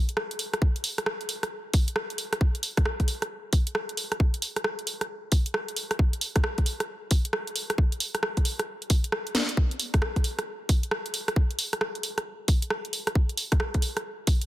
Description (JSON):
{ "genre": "UK garage", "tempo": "134 BPM", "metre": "4/4", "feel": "swing 64% on 16ths", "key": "none", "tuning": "none", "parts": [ { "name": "garage drum kit", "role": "drums", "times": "0.1-14.5 s", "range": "hi-hat, rim click, snare drum", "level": "-29 LUFS", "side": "right 1 dB", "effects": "soft clipping on snare" }, { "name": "electronic kick drum", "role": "drums", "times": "0.6-14.4 s", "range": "none", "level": "-23 LUFS", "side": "equal", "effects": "none" } ], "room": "light reverb", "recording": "dense, heavily limited modern master", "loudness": "-25 LUFS", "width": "side -16 dB against mid", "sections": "0.0-14.5 A section", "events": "drum fill 9.3", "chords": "none" }